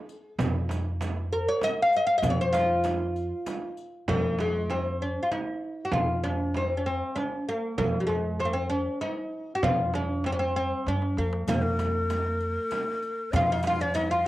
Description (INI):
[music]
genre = Arabic maqam ensemble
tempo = 97 BPM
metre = 3/4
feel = straight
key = F maqam huzam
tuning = A4 = 439 Hz
[part]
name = oud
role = melody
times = 0.0-14.3 s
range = Gb3+50c to F5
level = -27 LUFS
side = equal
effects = none
[part]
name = riq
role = percussion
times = 0.1-3.8, 11.5-14.1 s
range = none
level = -44 LUFS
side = left 5 dB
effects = none
[part]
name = upright bass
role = bass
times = 0.4-14.3 s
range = F2 to Gb2+50c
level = -30 LUFS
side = equal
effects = none
[part]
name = darbuka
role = percussion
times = 0.4-14.1 s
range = none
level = -36 LUFS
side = left 1 dB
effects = none
[part]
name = frame drum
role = percussion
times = 0.4-14.1 s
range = none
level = -34 LUFS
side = right 4 dB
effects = none
[part]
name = breathy bright ney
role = second line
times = 11.5-14.3 s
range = Bb4-44c to F5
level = -30 LUFS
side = left 2 dB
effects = cassette tape
[sound]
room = light reverb, small room reverb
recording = home recording on cassette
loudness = -25 LUFS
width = side -16 dB against mid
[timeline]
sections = 0.0-4.1 A section; 4.1-14.3 B section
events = drum fill 10.9-11.5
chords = none